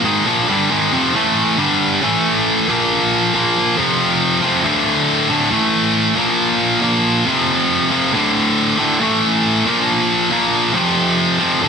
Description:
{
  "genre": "rock",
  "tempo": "138 BPM",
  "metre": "4/4",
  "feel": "straight",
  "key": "D minor",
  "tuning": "A4 = 441 Hz",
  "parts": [
    { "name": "heavy high-gain guitar", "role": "solo", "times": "0.0-11.7 s", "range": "D2 to Bb3", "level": "-13 LUFS", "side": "equal", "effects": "distortion" }
  ],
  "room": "light reverb, digital ambience",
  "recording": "heavily compressed radio sound",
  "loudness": "-13 LUFS",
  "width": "side -6 dB against mid",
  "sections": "0.0-2.0 A section; 2.0-11.7 B section",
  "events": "none",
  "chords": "0.0 Dm; 1.1 A5; 1.6 G5; 2.0 A5; 2.7 Bb5; 3.8 F5; 4.6 D5; 5.5 A5; 6.2 Bb5; 7.3 F5; 8.1 D5; 9.0 A5; 9.7 Bb5; 10.7 F5"
}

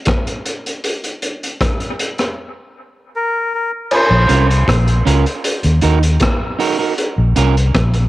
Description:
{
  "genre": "dub reggae",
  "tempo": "78 BPM",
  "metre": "4/4",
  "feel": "straight",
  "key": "Bb minor",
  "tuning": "A4 = 440 Hz",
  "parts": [
    { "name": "crunchy breakbeat drum kit", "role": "drums", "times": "0.1-8.1 s", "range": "crash cymbal, hi-hat, kick drum, rim click", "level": "-18 LUFS", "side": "equal", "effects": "cassette tape" },
    { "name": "melodica", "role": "melody", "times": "3.2-4.5 s", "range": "Bb4 to C5", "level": "-19 LUFS", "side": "equal", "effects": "cassette tape, dub echo" },
    { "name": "vintage muted fingered electric bass", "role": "bass", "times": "4.1-8.1 s", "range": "Bb1 to Eb2", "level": "-13 LUFS", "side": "equal", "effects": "transformer saturation" },
    { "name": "electric guitar at the edge of break-up", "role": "accompaniment", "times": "4.3-8.0 s", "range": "Db4 to Bb4", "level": "-20 LUFS", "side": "right 7 dB", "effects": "cassette tape, dub echo" }
  ],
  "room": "light reverb, small room ambience",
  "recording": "home recording on cassette",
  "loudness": "-14 LUFS",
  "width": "side -17 dB against mid",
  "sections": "0.0-3.9 A section; 3.9-8.1 B section",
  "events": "break 0.0-3.9",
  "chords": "0.0 N.C.; 3.9 Bbm; 5.4 Ebm; 7.0 Bbm"
}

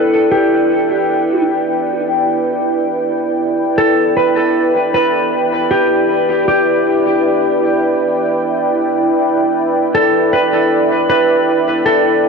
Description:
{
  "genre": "ambient",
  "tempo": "78 BPM",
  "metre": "4/4",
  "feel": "straight",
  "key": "E minor",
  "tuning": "A4 = 440 Hz",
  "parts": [
    { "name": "clean lap steel guitar", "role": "melody", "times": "0.0-12.3 s", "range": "G4 to B4", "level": "-15 LUFS", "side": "left 1 dB", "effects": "dub echo" },
    { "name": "deep dark ambient pad", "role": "sustained chords", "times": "0.0-12.3 s", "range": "E4 to G5", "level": "-14 LUFS", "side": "right 1 dB", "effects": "chorus, built-in reverb" }
  ],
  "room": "wet huge ambient reverb, RT60 6.4 s",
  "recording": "dark, warm production",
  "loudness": "-12 LUFS",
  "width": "side -4 dB against mid",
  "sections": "0.0-12.3 A section",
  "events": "none",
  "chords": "0.0 Em7"
}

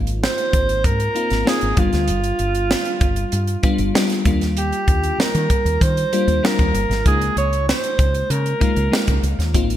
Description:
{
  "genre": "polished 1980s jazz-funk pop",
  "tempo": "96 BPM",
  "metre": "4/4",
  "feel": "straight",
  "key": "unclear",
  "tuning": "A4 = 440 Hz",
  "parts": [
    { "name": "bell-like FM electric piano", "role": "accompaniment", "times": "0.0-9.8 s", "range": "G3 to F4", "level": "-24 LUFS", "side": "left 3 dB", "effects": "analog chorus" },
    { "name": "woody fretless electric bass", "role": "bass", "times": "0.0-9.8 s", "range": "G1 to Eb3", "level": "-21 LUFS", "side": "equal", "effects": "none" },
    { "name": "crisp fusion drum kit", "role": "drums", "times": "0.1-9.8 s", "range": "hi-hat, kick drum, snare drum", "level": "-20 LUFS", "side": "equal", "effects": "gated reverb" },
    { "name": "breathy alto saxophone", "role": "melody", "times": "0.2-9.2 s", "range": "F4 to Db5", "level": "-22 LUFS", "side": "right 2 dB", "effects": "none" }
  ],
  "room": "light reverb, small room ambience",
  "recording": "bright 1980s-style digital production",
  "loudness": "-16 LUFS",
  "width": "side -12 dB against mid",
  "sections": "0.0-9.8 A section",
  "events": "none",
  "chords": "0.0 Ab6; 1.8 G7; 4.3 Ebmaj7; 7.1 Db69"
}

